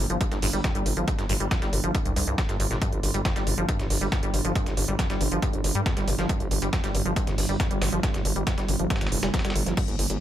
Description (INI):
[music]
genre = driving peak-time techno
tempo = 138 BPM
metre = 4/4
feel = straight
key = unclear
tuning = A4 = 441 Hz
[part]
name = acid bass, saw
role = riff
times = 0.0-10.2 s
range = G1 to G3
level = -31 LUFS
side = left 1 dB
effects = wide subtle chorus, sidechain pumping, ping-pong delay
[part]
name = gritty driven synth bass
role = bass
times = 0.0-10.2 s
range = F1 to G2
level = -28 LUFS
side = equal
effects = sidechain pumping
[part]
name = metallic inharmonic drone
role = drone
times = 0.0-10.2 s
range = G2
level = -34 LUFS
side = right 4 dB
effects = chorus, built-in reverb, sidechain pumping
[part]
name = techno drum kit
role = drums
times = 0.1-10.2 s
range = crash cymbal, hi-hat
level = -33 LUFS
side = right 3 dB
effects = none
[part]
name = dusty soul sampler-style drum kit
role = drums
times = 0.2-10.2 s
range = hi-hat, snare drum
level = -35 LUFS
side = equal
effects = high-pass filter on hats, high-pass filter on snare, high-pass filter on room
[part]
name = electronic kick drum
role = drums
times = 0.2-9.9 s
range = none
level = -27 LUFS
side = equal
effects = none
[sound]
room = digital ambience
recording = bright 1980s-style digital production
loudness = -23 LUFS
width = side -12 dB against mid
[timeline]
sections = 0.0-10.2 A section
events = none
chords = 0.0 Fsus2